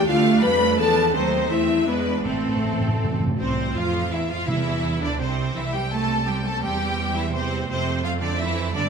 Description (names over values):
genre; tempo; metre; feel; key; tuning
quick classical-period movement for symphony orchestra; 168 BPM; 3/4; rubato; unclear; A4 = 440 Hz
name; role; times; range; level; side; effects
clear studio violin section; melody; 0.0-8.9 s; A4 to B5; -29 LUFS; left 2 dB; none
clear studio violin section; second line; 0.0-8.8 s; C4 to B5; -29 LUFS; left 1 dB; none
rich studio viola section; accompaniment; 0.0-8.9 s; G3 to F4; -29 LUFS; right 4 dB; none
mellow French horn section; sustained chords; 0.0-3.2 s; A3 to B4; -22 LUFS; left 4 dB; none
bright studio cello section; bass; 0.0-8.9 s; C3 to C4; -28 LUFS; right 4 dB; none
clear studio double bass section; bass; 0.0-8.9 s; A1 to G2; -28 LUFS; right 4 dB; none
timpani; percussion; 2.2-5.0 s; A2 to C3; -27 LUFS; equal; none
room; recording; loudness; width
moderate scoring stage reverb, RT60 1.9 s; none; -20 LUFS; side -6 dB against mid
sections
0.0-3.4 A section; 3.4-8.9 A section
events
timpani fill 2.2-3.4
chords
0.1 Bm7b5/D; 1.1 D#dim7; 1.5 Am/E; 1.9 E7; 2.2 Am; 3.4 Cadd11; 4.5 Cadd9; 5.6 C; 6.6 C/E; 7.7 F